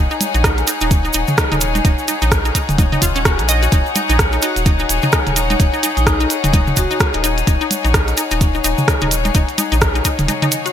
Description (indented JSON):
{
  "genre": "minimal techno",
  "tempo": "128 BPM",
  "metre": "4/4",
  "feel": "swing 59% on 16ths",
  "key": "Eb minor",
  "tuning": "A4 = 440 Hz",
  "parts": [
    { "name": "resonant blip pluck", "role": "riff", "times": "0.0-10.7 s", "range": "Db4 to Eb5", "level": "-22 LUFS", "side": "equal", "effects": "chorus, sidechain pumping, ping-pong delay" },
    { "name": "round analog bass", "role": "bass", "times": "0.0-10.3 s", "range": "Eb1 to Bb1", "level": "-20 LUFS", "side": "equal", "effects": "sidechain pumping" },
    { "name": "dark studio string section", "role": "texture", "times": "0.0-10.7 s", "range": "Eb4 to Gb5", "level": "-21 LUFS", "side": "left 5 dB", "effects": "sidechain pumping" },
    { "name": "cabasa", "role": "percussion", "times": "0.1-10.7 s", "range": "none", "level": "-24 LUFS", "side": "right 5 dB", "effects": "none" },
    { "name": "minimal click drum kit", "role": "drums", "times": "0.2-10.7 s", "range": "hi-hat, rim click", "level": "-20 LUFS", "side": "right 1 dB", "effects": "gated reverb" },
    { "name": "electronic congas and toms", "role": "percussion", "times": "0.2-10.5 s", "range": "none", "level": "-22 LUFS", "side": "right 1 dB", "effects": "gated reverb, digital delay" },
    { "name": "electronic kick drum", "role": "drums", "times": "0.4-10.2 s", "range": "none", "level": "-16 LUFS", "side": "equal", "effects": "none" },
    { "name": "vibraphone with medium hard mallets", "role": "melody", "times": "4.4-7.0 s", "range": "Eb4 to Gb4", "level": "-26 LUFS", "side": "equal", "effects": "digital delay" }
  ],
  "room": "light reverb",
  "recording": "bright 1980s-style digital production",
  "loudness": "-13 LUFS",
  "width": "side -10 dB against mid",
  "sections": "0.0-10.7 A section",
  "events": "none",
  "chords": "0.0 Ebsus4"
}